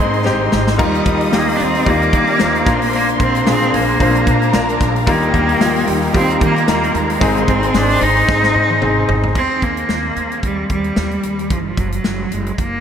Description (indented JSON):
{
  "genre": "piano-driven pop",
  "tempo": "112 BPM",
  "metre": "4/4",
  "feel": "swing 56% on 16ths",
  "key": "Eb major",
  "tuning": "A4 = 441 Hz",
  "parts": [
    { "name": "clear cello", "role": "melody", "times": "0.0-12.8 s", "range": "Eb3 to Eb4", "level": "-18 LUFS", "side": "right 1 dB", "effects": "none" },
    { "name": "warm symphonic violin section", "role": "second line", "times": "0.0-9.3 s", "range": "G4 to Eb6", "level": "-24 LUFS", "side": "right 1 dB", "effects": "none" },
    { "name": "clear baby grand piano", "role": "accompaniment", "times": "0.0-9.4 s", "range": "Ab2 to C5", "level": "-19 LUFS", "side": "left 3 dB", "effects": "none" },
    { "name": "warm studio string section", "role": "sustained chords", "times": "0.0-9.3 s", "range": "D4 to Ab5", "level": "-27 LUFS", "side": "left 1 dB", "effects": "none" },
    { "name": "upright bass", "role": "bass", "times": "0.0-12.8 s", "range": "Gb1 to Eb3", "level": "-21 LUFS", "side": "right 1 dB", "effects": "none" },
    { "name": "modern studio drum kit", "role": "drums", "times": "0.1-12.7 s", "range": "crash cymbal, hi-hat, kick drum, snare drum, toms", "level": "-20 LUFS", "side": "equal", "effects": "none" }
  ],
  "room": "wet cathedral reverb, RT60 6.8 s",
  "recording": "dreamy mix soaked in reverb",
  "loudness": "-13 LUFS",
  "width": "side -8 dB against mid",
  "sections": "0.0-9.4 A section; 9.4-12.8 B section",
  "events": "drum fill 0.3-0.8, 8.3-9.4",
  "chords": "0.0 Ab; 0.8 Ebadd9; 2.7 Bb; 5.1 Ebadd9; 7.2 Ab; 9.4 Eb; 11.5 N.C.",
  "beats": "0.26 | 0.79 1.32 1.86 2.40 | 2.93 3.47 4.00 4.54 | 5.07 5.61 6.14 6.68 | 7.21 7.75 8.29 8.82 | 9.36 9.89 10.43 10.97 | 11.50 12.04 12.58"
}